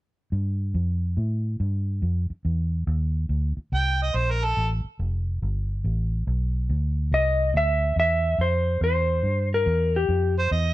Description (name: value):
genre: electric blues shuffle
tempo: 141 BPM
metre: 4/4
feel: swing 65% on 8ths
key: C mixolydian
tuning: A4 = 440 Hz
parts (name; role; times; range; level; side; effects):
- vintage muted fingered electric bass; bass; 0.3-10.7 s; F1 to A2; -24 LUFS; equal; none
- overdriven harmonica; second line; 3.7-4.7, 10.4-10.7 s; A4 to G5; -25 LUFS; right 2 dB; none
- clean lap steel guitar; melody; 7.1-10.3 s; G4 to E5; -22 LUFS; left 1 dB; none
room: little or no reverb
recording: none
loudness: -22 LUFS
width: side -16 dB against mid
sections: 0.3-7.1 A section; 7.1-10.7 B section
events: none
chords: 0.3 Fadd9; 2.0 Dmadd9; 3.7 Eb6 (rootless); 4.6 F; 5.4 G; 7.1 C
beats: | 0.32 0.74 1.17 1.60 | 2.02 2.45 2.88 3.30 | 3.73 4.15 4.58 5.00 | 5.42 5.85 6.27 6.70 | 7.12 7.54 7.97 8.39 | 8.82 9.24 9.66 10.09 | 10.51